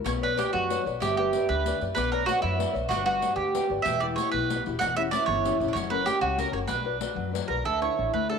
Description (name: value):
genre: italian folk, Italian serenade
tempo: 126 BPM (dotted quarters)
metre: 6/8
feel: straight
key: B harmonic minor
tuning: A4 = 437 Hz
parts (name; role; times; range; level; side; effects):
- mandolin; second line; 0.0-8.4 s; C#4 to G4; -33 LUFS; right 10 dB; none
- nylon-string guitar; accompaniment; 0.0-8.4 s; B2 to F#5; -31 LUFS; left 12 dB; none
- mandolin; melody; 0.1-8.4 s; E4 to F#5; -27 LUFS; right 4 dB; none
- upright bass; bass; 0.1-8.3 s; E1 to F#2; -34 LUFS; equal; transformer saturation
- riq; percussion; 0.1-7.5 s; none; -37 LUFS; left 14 dB; none
room: moderate plate reverb, RT60 2.6 s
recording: 1960s-style stereo with parts hard left and right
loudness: -24 LUFS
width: side -6 dB against mid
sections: 0.1-7.7 A section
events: none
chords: 0.1 Bmadd9; 1.0 G; 2.0 Bmadd9; 2.9 G; 3.9 Emadd9; 4.8 C#dim/E; 5.8 F#; 6.7 Bm; 7.7 Dsus2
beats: | 0.05 0.53 | 1.01 1.49 | 1.97 2.43 | 2.90 3.38 | 3.86 4.34 | 4.81 5.28 | 5.75 6.22 | 6.69 7.17 | 7.65 8.13